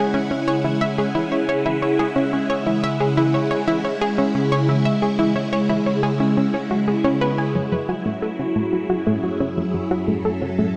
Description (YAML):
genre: ambient, sequencer-driven space music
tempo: 89 BPM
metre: 4/4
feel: straight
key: C# minor, F# minor from 7.6 s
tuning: A4 = 439 Hz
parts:
  - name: phased string machine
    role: sustained chords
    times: 0.0-10.8 s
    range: C#3 to G#5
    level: -23 LUFS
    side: equal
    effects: ensemble chorus, phaser, shimmer reverb
  - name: analog pluck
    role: riff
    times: 0.0-10.7 s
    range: F#3 to G#5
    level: -24 LUFS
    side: equal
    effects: chorus, tape echo, shimmer reverb
  - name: bubbling stepped-filter texture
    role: texture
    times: 0.0-7.6 s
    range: F#5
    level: -41 LUFS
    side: equal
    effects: chorus, built-in reverb, shimmer reverb
  - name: fat analog bass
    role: bass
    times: 7.6-10.8 s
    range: F#2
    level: -39 LUFS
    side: equal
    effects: none
room: wet plate reverb, RT60 2.8 s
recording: dark, warm production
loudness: -21 LUFS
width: mono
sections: 0.0-7.6 A section; 7.6-10.8 B section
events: filter sweep on synth arpeggio sound 7.6-10.8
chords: 0.0 C#m; 7.6 F#m7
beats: 0.14 0.81 1.48 | 2.16 2.83 3.51 4.18 | 4.86 5.53 6.20 6.88 | 7.55 8.23 8.90 9.57 | 10.25